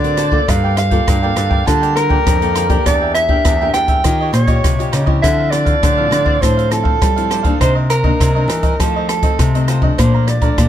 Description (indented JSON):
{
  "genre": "samba and choro",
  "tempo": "101 BPM",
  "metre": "4/4",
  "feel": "straight",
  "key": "D minor",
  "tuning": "A4 = 440 Hz",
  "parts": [
    { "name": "mellow soprano saxophone", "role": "melody", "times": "0.0-10.7 s", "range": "A4 to A5", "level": "-17 LUFS", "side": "right 2 dB", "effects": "none" },
    { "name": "cavaquinho", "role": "accompaniment", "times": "0.0-10.7 s", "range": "D4 to Bb5", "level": "-25 LUFS", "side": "right 4 dB", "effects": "none" },
    { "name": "nylon-string guitar", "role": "accompaniment", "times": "0.0-10.7 s", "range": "F2 to Bb4", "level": "-23 LUFS", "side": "left 6 dB", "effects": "none" },
    { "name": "nylon-string guitar", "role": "bass", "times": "0.0-10.7 s", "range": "E2 to G3", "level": "-17 LUFS", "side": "equal", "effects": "none" },
    { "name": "open jazz drum kit", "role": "drums", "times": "0.0-10.7 s", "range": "hi-hat, kick drum, rim click", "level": "-17 LUFS", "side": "equal", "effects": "none" }
  ],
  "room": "little or no reverb",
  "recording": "close, detailed microphones",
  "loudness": "-12 LUFS",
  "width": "side -10 dB against mid",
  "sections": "0.0-10.7 A section",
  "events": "none",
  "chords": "0.5 Gm9; 2.9 Em7b5; 4.0 Eb9; 5.2 Dm9; 7.6 Cm9; 8.8 F7; 10.0 Bbmaj7"
}